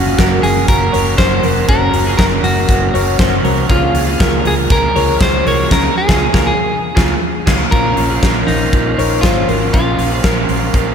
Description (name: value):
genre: jangly indie pop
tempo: 119 BPM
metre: 4/4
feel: straight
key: unclear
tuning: A4 = 440 Hz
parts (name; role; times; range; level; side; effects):
- clean electric guitar; melody; 0.0-10.2 s; Eb4 to Db5; -18 LUFS; equal; slapback echo, tape echo
- crunchy overdriven guitar; accompaniment; 0.0-10.9 s; Bb2 to C5; -20 LUFS; right 6 dB; slapback echo
- twelve-string electric guitar; arpeggios; 0.0-10.9 s; Db4 to Db5; -20 LUFS; left 3 dB; slapback echo
- vintage muted fingered electric bass; bass; 0.0-10.9 s; F1 to Db2; -19 LUFS; equal; none
- big rock drum kit; drums; 0.2-10.9 s; crash cymbal, hi-hat, kick drum, snare drum; -15 LUFS; equal; none
room: moderate lush hall reverb, RT60 2.6 s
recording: big arena sound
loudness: -11 LUFS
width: side -7 dB against mid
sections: 0.0-7.7 A section; 7.7-10.9 B section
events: band accent 5.7-7.7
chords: 0.0 Gb; 3.7 Db6; 7.7 Bbmadd9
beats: 0.19 0.69 1.19 | 1.69 2.19 2.69 3.20 | 3.70 4.20 4.70 5.21 | 5.71 6.21 6.72 7.22 | 7.72 8.23 8.73 9.23 | 9.74 10.24 10.74